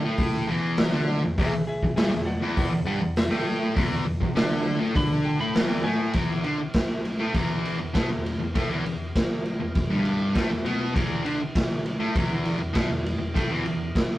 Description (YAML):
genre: garage rock duo or trio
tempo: 100 BPM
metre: 4/4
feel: straight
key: unclear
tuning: A4 = 445 Hz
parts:
  - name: fuzz guitar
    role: riff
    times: 0.0-13.9 s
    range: E2 to D4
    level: -26 LUFS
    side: equal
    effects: distortion
  - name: raw garage drum kit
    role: drums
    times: 0.2-14.1 s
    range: hi-hat, kick drum, ride cymbal, snare drum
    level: -25 LUFS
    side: equal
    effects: none
  - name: clean lap steel guitar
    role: melody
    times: 1.4-6.1 s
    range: G#4 to B5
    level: -33 LUFS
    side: equal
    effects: none
room: moderate studio reverb, RT60 0.7 s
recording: rough rehearsal-room recording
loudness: -22 LUFS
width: side -15 dB against mid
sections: 0.0-6.2 A section; 6.2-14.2 B section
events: electric slide guitar solo 0.0-6.2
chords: 0.0 N.C.; 6.2 E5